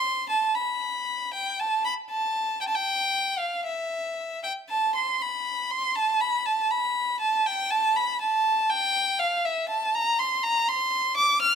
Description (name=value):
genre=classical, baroque-style suite movement for unaccompanied violin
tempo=59 BPM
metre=3/4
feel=uneven beats, rubato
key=unclear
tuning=A4 = 439 Hz
part: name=clear violin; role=solo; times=0.0-11.6 s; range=E5 to F6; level=-23 LUFS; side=equal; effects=none
room=moderate recital hall reverb, RT60 1.7 s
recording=close, detailed microphones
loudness=-23 LUFS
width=side -7 dB against mid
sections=0.0-11.6 A section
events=none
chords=none